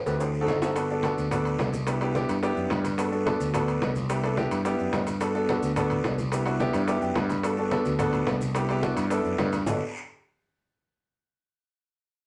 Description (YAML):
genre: Afro-Cuban jazz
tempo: 216 BPM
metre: 4/4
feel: straight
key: G major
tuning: A4 = 440 Hz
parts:
  - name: vibraphone with medium mallets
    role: melody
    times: 0.1-0.6 s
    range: A4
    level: -36 LUFS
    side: equal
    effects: none
  - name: warm grand piano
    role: accompaniment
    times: 0.1-9.8 s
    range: B3 to B5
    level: -30 LUFS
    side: equal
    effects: none
  - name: fretless electric bass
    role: bass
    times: 0.1-9.8 s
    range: G1 to G2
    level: -32 LUFS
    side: equal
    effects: none
  - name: bongos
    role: percussion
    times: 0.1-9.7 s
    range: none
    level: -37 LUFS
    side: equal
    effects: none
  - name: congas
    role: percussion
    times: 0.1-9.7 s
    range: none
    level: -38 LUFS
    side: equal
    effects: none
  - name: guiro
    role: percussion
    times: 0.1-9.7 s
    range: none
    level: -46 LUFS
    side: equal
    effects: none
  - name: maracas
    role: percussion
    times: 0.1-9.7 s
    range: none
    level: -51 LUFS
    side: equal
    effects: none
  - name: timbales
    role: percussion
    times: 0.1-9.7 s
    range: none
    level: -37 LUFS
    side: equal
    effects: none
room: wet studio reverb, RT60 0.6 s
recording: none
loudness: -27 LUFS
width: mono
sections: 0.8-9.7 A section; 9.7-10.8 B section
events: drum fill 0.0-0.8; grand piano fill 6.6-7.4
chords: 0.2 D7b9; 0.8 Gmaj7; 1.9 Cmaj7; 3.0 Gmaj7; 4.1 Cmaj7; 5.2 Gmaj7; 6.3 Cmaj7; 7.4 Gmaj7; 8.6 Cmaj7; 9.7 Gmaj7